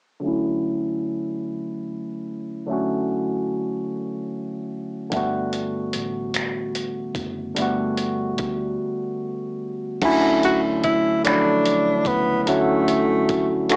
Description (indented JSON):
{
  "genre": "slow six-eight R&B",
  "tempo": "49 BPM (dotted quarters)",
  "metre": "6/8",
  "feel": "straight",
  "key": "D major",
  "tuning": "A4 = 440 Hz",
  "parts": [
    { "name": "barky tine electric piano", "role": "accompaniment", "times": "0.2-13.8 s", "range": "D3 to C#5", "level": "-25 LUFS", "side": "equal", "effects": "overdrive, phaser, low-pass filter, cassette tape" },
    { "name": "vintage muted fingered electric bass", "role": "bass", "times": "5.1-13.8 s", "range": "F#1 to D2", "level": "-42 LUFS", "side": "equal", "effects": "none" },
    { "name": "dusty soul sampler-style drum kit", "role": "drums", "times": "5.1-13.8 s", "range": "crash cymbal, finger snaps, hi-hat, kick drum", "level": "-30 LUFS", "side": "equal", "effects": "none" },
    { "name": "breathy tenor saxophone", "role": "melody", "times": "10.4-13.7 s", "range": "A3 to F#4", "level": "-24 LUFS", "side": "equal", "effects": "cassette tape" }
  ],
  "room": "moderate booth ambience, RT60 0.2 s",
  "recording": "home recording on cassette, small speaker sound",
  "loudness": "-23 LUFS",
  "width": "mono",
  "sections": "0.2-10.0 A section; 10.0-13.8 B section",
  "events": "filter sweep on tine electric piano 0.2-10.0; break 8.8-10.0",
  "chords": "0.2 Dmaj9; 5.1 Gmaj9; 10.0 Dmaj9"
}